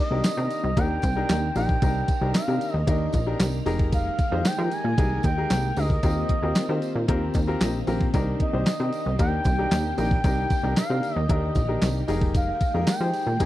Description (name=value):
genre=early-eighties boogie funk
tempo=114 BPM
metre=4/4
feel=straight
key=C minor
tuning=A4 = 439 Hz
part: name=expressive synth lead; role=melody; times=0.0-13.5 s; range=Eb5 to Ab5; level=-29 LUFS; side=equal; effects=chorus, slapback echo
part: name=string machine, violins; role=sustained chords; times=0.0-13.5 s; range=D3 to G5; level=-34 LUFS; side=equal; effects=ensemble chorus
part: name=clear baby grand piano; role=accompaniment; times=0.1-13.5 s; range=C4 to Eb5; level=-30 LUFS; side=left 3 dB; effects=none
part: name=plucky analog bass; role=bass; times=0.1-13.5 s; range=F1 to F3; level=-26 LUFS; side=equal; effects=none
part: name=crisp 8-bit digital drum machine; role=drums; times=0.2-13.5 s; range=handclaps, hi-hat, kick drum, snare drum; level=-24 LUFS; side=equal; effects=none
part: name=tambourine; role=percussion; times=0.2-13.5 s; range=none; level=-44 LUFS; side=right 6 dB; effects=none
room=light reverb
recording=dry, close 1970s-style studio recording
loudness=-21 LUFS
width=side -15 dB against mid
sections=0.0-13.5 A section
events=grand piano fill 7.3-8.1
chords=0.0 Cm7; 3.7 Fm11; 6.0 Eb6; 8.1 Cm7; 12.1 Fm11